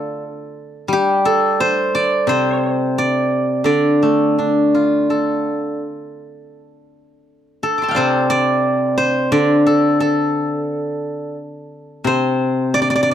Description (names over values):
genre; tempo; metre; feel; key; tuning
chinese traditional, Chinese solo plucked strings; 79-90 BPM; 4/4; rubato; D yu mode; A4 = 440 Hz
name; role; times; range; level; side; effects
steel-string zither; solo; 0.0-13.1 s; C3 to D6; -15 LUFS; equal; none
room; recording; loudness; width
little or no reverb; dry, close 1970s-style studio recording; -15 LUFS; side -10 dB against mid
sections
0.0-6.5 A section; 6.5-13.1 B section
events
none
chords
none